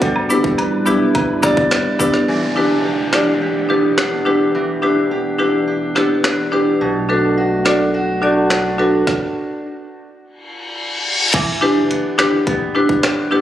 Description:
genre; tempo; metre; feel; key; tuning
dancehall; 106 BPM; 4/4; straight; E minor; A4 = 444 Hz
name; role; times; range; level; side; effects
hollow soft pad; sustained chords; 0.0-9.1 s; E3 to B4; -25 LUFS; right 3 dB; chorus, sidechain pumping
fingerpicked steel-string acoustic guitar; arpeggios; 0.0-13.4 s; B2 to D5; -21 LUFS; right 2 dB; tape echo
warm sub bass; bass; 0.0-13.4 s; E1 to B1; -30 LUFS; equal; none
island pop drum kit; drums; 0.0-13.2 s; crash cymbal, finger snaps, hi-hat, kick drum, rim click, snare drum; -20 LUFS; equal; none
woodblock and cabasa; percussion; 0.2-2.1 s; none; -24 LUFS; equal; none
marimba with medium hard mallets; accompaniment; 0.3-13.4 s; B3 to D5; -16 LUFS; left 1 dB; none
downlifter and reverse cymbal; sound effects; 2.3-11.3 s; none; -22 LUFS; left 1 dB; none
room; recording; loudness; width
moderate lush hall reverb, RT60 1.8 s; recorded on a phone in the room, club reverb; -14 LUFS; side -12 dB against mid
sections
0.0-2.3 A section; 2.3-11.3 B section; 11.3-13.4 C section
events
stop 9.1-11.3; reverse cymbal 10.6-11.3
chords
0.0 G6; 2.3 Em7; 6.8 Bm7; 9.1 N.C.; 11.3 Em7

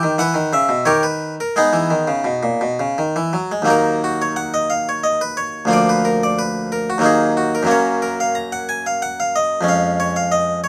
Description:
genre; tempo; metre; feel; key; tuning
classical, baroque-style suite movement for harpsichord; 83-93 BPM; 3/4; rubato; G# minor, Eb minor from 3.7 s; A4 = 440 Hz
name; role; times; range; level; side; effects
harpsichord; solo; 0.0-10.7 s; D2 to Bb5; -18 LUFS; equal; none
room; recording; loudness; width
little or no reverb; close, detailed microphones; -18 LUFS; mono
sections
0.0-3.7 A section; 3.7-10.7 A section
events
none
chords
0.2 E5; 0.9 D#; 1.6 G#m; 3.7 Ebm; 5.7 Bb/D; 7.0 Ebm; 7.7 Gb; 9.7 Db/F

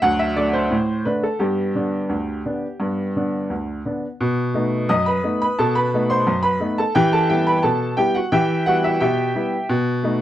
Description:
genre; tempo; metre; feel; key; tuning
ragtime piano; 87 BPM; 2/4; straight; unclear; A4 = 438 Hz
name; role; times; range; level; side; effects
clear upright piano; solo; 0.0-10.2 s; D2 to D#6; -18 LUFS; equal; none
room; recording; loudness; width
light reverb; close, detailed microphones; -18 LUFS; side -12 dB against mid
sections
0.0-4.2 A section; 4.2-10.2 B section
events
none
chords
0.0 D; 1.4 G; 4.2 B7; 7.0 Em; 9.7 B7

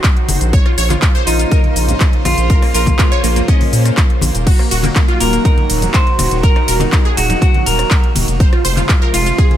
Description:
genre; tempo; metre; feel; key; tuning
progressive house; 122 BPM; 4/4; straight; Eb dorian; A4 = 440 Hz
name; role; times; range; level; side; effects
clean electric guitar; melody; 0.0-9.6 s; Db4 to Eb5; -20 LUFS; equal; sidechain pumping, ping-pong delay
supersaw pad; sustained chords; 0.0-9.6 s; C3 to C5; -23 LUFS; equal; phaser, sidechain pumping
wide unison pluck; arpeggios; 0.0-9.6 s; Bb3 to Eb5; -22 LUFS; right 1 dB; phaser, sidechain pumping, ping-pong delay
electronic kick drum; drums; 0.0-9.5 s; none; -12 LUFS; equal; overdrive
house drum kit; drums; 0.0-9.6 s; crash cymbal, handclaps, hi-hat, ride cymbal, rim click, shaker; -20 LUFS; equal; overdrive
round analog bass; bass; 0.3-9.3 s; Eb1 to Bb2; -16 LUFS; equal; sidechain pumping
congas; percussion; 0.3-9.6 s; none; -23 LUFS; left 3 dB; sidechain pumping on perc
room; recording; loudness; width
digital ambience; none; -11 LUFS; side -11 dB against mid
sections
0.0-9.6 A section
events
none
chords
0.0 Ebm; 0.5 Bbmadd9; 4.5 Ebm; 8.4 Fm

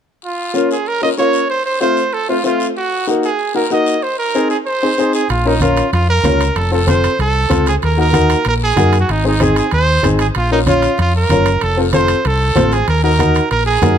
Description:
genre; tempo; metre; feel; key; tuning
latin, cumbia; 190 BPM; 4/4; straight; Bb minor; A4 = 441 Hz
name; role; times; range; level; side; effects
guiro; percussion; 0.2-14.0 s; none; -30 LUFS; left 8 dB; none
bright trumpet; melody; 0.3-14.0 s; Eb4 to Eb5; -17 LUFS; right 3 dB; none
clear upright piano; accompaniment; 0.5-14.0 s; A3 to Db5; -17 LUFS; left 3 dB; none
fingered electric bass; bass; 5.3-14.0 s; F1 to Gb2; -16 LUFS; equal; none
congas; percussion; 5.3-14.0 s; none; -21 LUFS; right 1 dB; none
timbales; percussion; 5.3-14.0 s; none; -25 LUFS; right 7 dB; none
room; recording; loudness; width
light reverb; none; -12 LUFS; side -8 dB against mid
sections
0.2-5.3 A section; 5.3-14.0 B section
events
none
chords
0.2 Bbm; 1.5 F; 2.8 Ebm; 4.0 Ab; 5.3 Bbm; 6.6 F; 7.8 Ebm; 9.1 Ab; 10.4 Bbm; 11.6 F; 12.9 Ebm

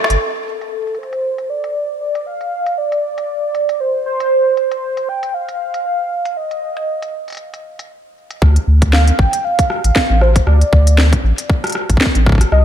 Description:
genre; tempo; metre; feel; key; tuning
IDM; 117 BPM; 4/4; swing 56% on 16ths; D phrygian; A4 = 441 Hz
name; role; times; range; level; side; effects
warm velvety synth lead; melody; 0.0-12.6 s; A4 to G5; -18 LUFS; right 1 dB; chorus, ping-pong delay
organic electronic drum kit; drums; 0.0-12.6 s; hi-hat, rim click, snare drum; -19 LUFS; equal; overdrive, low-pass filter on hats, low-pass filter on snare, low-pass filter on room
warm sub bass; bass; 0.1-0.2, 8.4-12.6 s; G1 to D2; -11 LUFS; equal; none
electronic kick drum; drums; 8.4-12.4 s; none; -16 LUFS; equal; overdrive
room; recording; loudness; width
light reverb, digital ambience; none; -13 LUFS; side -10 dB against mid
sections
0.2-8.4 A section; 8.4-12.6 B section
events
drum fill 0.0; band accent 0.0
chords
0.2 N.C.; 8.4 Dm

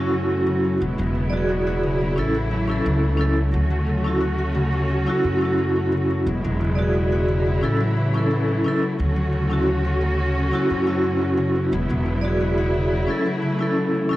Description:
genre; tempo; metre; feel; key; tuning
trip hop; 88 BPM; 4/4; straight; unclear; A4 = 440 Hz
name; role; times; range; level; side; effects
vibraphone with medium hard mallets; accompaniment; 0.0-14.2 s; C#4 to D5; -24 LUFS; equal; tremolo, tape echo
dark studio string section; sustained chords; 0.0-14.2 s; C#3 to F#4; -27 LUFS; equal; none
concert harp; arpeggios; 0.0-14.2 s; C#3 to F#4; -26 LUFS; left 1 dB; tape echo
upright bass; bass; 0.0-13.1 s; E1 to F#2; -24 LUFS; equal; none
room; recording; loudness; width
light reverb; dry, gritty hardware recording, vinyl crackle; -19 LUFS; side -16 dB against mid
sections
0.0-14.2 A section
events
none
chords
0.0 Dmaj7 (rootless); 0.8 E7; 2.2 A; 3.5 Dmaj7; 6.3 E7; 7.6 A; 9.0 Dmaj7; 11.7 E7; 13.1 A

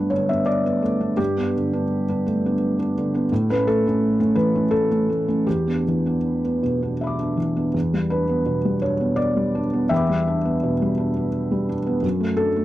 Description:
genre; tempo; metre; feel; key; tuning
neoclassical minimalist piano; 84 BPM; 3/4; rubato; E dorian; A4 = 440 Hz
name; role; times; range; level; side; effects
felt-muted upright piano; solo; 0.0-12.6 s; E2 to D6; -19 LUFS; equal; none
room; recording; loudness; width
moderate booth ambience, RT60 0.2 s; dry, close 1970s-style studio recording; -19 LUFS; side -15 dB against mid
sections
0.0-7.7 A section; 7.7-12.6 B section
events
none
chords
0.0 Gadd9; 3.3 A; 5.5 Em7; 12.0 D/F#

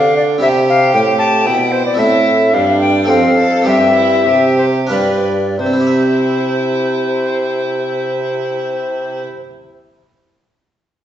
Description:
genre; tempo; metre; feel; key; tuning
classical, baroque-style sonata movement with continuo; 85-116 BPM; 3/4; rubato; C major; A4 = 440 Hz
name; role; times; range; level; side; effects
tenor recorder; melody; 0.0-9.2 s; C5 to A5; -16 LUFS; left 3 dB; none
clear violin; second line; 0.0-9.2 s; C4 to B4; -20 LUFS; right 3 dB; none
harpsichord; accompaniment; 0.0-9.5 s; F2 to E5; -18 LUFS; right 1 dB; none
mellow bassoon; bass; 0.0-9.2 s; F2 to D3; -18 LUFS; right 2 dB; none
room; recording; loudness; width
wet recital hall reverb, RT60 1.4 s; heard from further back in the room, nothing above 8.0 kHz; -12 LUFS; side -10 dB against mid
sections
0.0-5.6 A section; 5.6-9.7 B section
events
slowing down 1.2-5.6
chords
0.4 C; 2.0 Am; 3.1 F; 3.7 C/G; 4.9 G7; 5.6 C

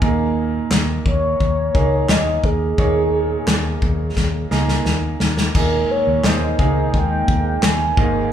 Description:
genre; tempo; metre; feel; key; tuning
piano-driven pop; 87 BPM; 4/4; straight; unclear; A4 = 442 Hz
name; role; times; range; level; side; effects
mellow horn-like synth lead; melody; 0.0-8.3 s; Ab4 to Ab5; -21 LUFS; right 1 dB; chorus
bright baby grand piano; accompaniment; 0.0-8.3 s; Ab2 to Db5; -23 LUFS; right 4 dB; none
vintage muted fingered electric bass; bass; 0.0-8.3 s; Ab1 to Eb2; -22 LUFS; left 1 dB; none
loose indie drum kit; drums; 0.0-8.1 s; crash cymbal, handclaps, kick drum, snare drum; -20 LUFS; left 1 dB; none
warm analog pad; sustained chords; 5.5-8.3 s; Eb3 to Bb3; -27 LUFS; right 2 dB; chorus
room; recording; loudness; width
moderate large studio reverb, RT60 1.4 s; band playing live in one room; -16 LUFS; side -9 dB against mid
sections
0.0-5.6 A section; 5.6-8.3 B section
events
drum fill 4.2-5.6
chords
0.0 Ebsus4

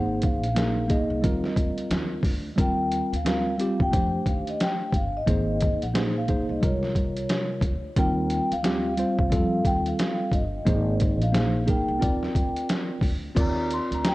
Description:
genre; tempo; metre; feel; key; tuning
hip hop, jazz-hop; 89 BPM; 4/4; swing 62% on 16ths; Eb major; A4 = 439 Hz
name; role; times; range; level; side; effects
vibraphone with soft mallets; melody; 0.0-14.1 s; Db5 to C6; -30 LUFS; left 2 dB; analog delay
tine electric piano; accompaniment; 0.0-14.1 s; C3 to Eb5; -27 LUFS; right 1 dB; medium stereo tremolo
upright bass; bass; 0.0-14.1 s; G1 to F2; -29 LUFS; equal; none
trip hop sampler-style drum kit; drums; 0.2-14.1 s; crash cymbal, hi-hat, kick drum, snare drum; -25 LUFS; equal; overdrive
room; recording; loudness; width
light reverb; worn, warbling old tape, cassette tape, warbly pitch drift; -22 LUFS; side -18 dB against mid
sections
0.0-2.6 A section; 2.6-13.4 A section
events
none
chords
0.0 Ab; 1.2 Ebmaj9; 2.6 Eb69; 3.9 F7; 5.3 Ab; 6.6 Dbmaj7; 8.0 Eb69; 9.3 F7; 10.7 Ab; 12.0 Ebmaj9

